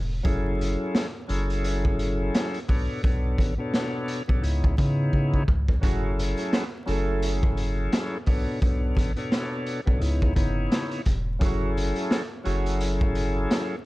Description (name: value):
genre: hip hop, boom-bap hip-hop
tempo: 86 BPM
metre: 4/4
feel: swing 58% on 16ths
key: F# minor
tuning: A4 = 444 Hz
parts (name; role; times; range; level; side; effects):
- soft dub sub bass; bass; 0.0-13.5 s; E1 to C#3; -26 LUFS; equal; none
- bright tonewheel organ; accompaniment; 0.2-13.8 s; B2 to C#5; -29 LUFS; left 1 dB; slow rotary speaker, cassette tape, high-pass filter, low-pass filter
- raw garage drum kit; drums; 0.2-13.7 s; hi-hat, kick drum, snare drum; -26 LUFS; equal; vintage 12-bit sampler grit
- mellow horn section; stabs; 5.8-13.1 s; F#3 to B4; -34 LUFS; right 8 dB; high-pass filter, low-pass filter, slapback echo
room: studio ambience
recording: dark, warm production, vinyl crackle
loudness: -23 LUFS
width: side -19 dB against mid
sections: 0.0-13.9 A section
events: drum fill 5.1-5.8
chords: 0.2 F#m9; 2.7 Bm9; 4.4 C#m9; 5.8 F#m9; 8.3 Bm9; 10.0 C#m9; 11.4 F#m9